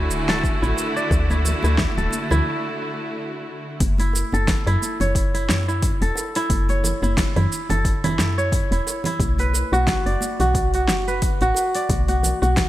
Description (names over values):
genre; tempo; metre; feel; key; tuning
organic downtempo; 89 BPM; 4/4; swing 56% on 16ths; F# minor; A4 = 441 Hz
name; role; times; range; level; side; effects
clear studio string section; sustained chords; 0.0-3.8 s; D3 to G#5; -27 LUFS; equal; sidechain pumping, shimmer reverb
kora; arpeggios; 0.0-12.7 s; E4 to D5; -24 LUFS; right 1 dB; digital delay, shimmer reverb
woody FM bass; bass; 0.0-12.6 s; D1 to F#2; -22 LUFS; equal; tube saturation, sidechain pumping
deep house drum kit; drums; 0.1-12.7 s; congas, hi-hat, shaker, snare drum; -26 LUFS; right 1 dB; overdrive
electronic kick drum; drums; 0.4-12.7 s; none; -24 LUFS; equal; overdrive
bongos and congas; percussion; 0.8-12.5 s; none; -31 LUFS; equal; none
room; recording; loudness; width
light reverb, studio ambience; bright 1980s-style digital production; -18 LUFS; side -14 dB against mid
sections
0.0-3.8 A section; 3.8-12.7 B section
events
break 2.5-3.8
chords
0.0 Dadd9; 3.8 F#m7; 9.2 Bm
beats
0.43 | 1.11 1.78 2.46 3.13 | 3.81 4.48 5.15 5.83 | 6.50 7.18 7.85 8.53 | 9.20 9.87 10.55 11.22 | 11.90 12.57